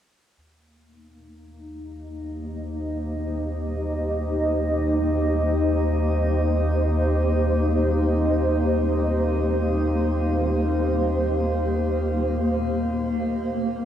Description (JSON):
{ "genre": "ambient", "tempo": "free time", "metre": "none", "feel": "none", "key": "unclear", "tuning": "A4 = 438 Hz", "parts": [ { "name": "granular cloud pad", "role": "sustained chords", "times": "1.7-13.8 s", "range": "Bb3 to Eb5", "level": "-23 LUFS", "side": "equal", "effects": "built-in reverb, shimmer reverb" }, { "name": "round analog bass", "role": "bass", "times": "0.4-13.8 s", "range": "Eb2", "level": "-26 LUFS", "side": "equal", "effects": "none" } ], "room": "wet cathedral reverb, RT60 5.2 s", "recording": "cassette tape", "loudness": "-21 LUFS", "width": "side -10 dB against mid", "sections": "0.4-13.8 A section", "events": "filter sweep on ambient pad 0.4-13.8", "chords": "0.4 Eb6" }